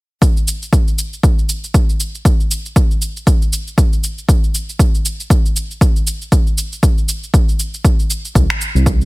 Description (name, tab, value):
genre	afro house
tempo	118 BPM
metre	4/4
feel	swing 58% on 16ths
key	unclear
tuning	A4 = 440 Hz
part	electronic cabasa and finger snaps	drums	0.2-9.1 s	none	-23 LUFS	right 1 dB	overdrive, studio reverb
part	electronic kick drum	drums	0.2-9.0 s	none	-13 LUFS	equal	overdrive, studio reverb
part	dark detuned saw bass	bass	8.4-9.1 s	C2	-13 LUFS	equal	sidechain pumping
room	digital ambience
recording	none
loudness	-13 LUFS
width	side -22 dB against mid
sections	0.2-9.1 A section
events	none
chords	none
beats	| 0.22 0.73 1.23 1.74 | 2.25 2.76 3.27 3.78 | 4.29 4.79 5.30 5.81 | 6.32 6.83 7.34 7.84 | 8.35 8.86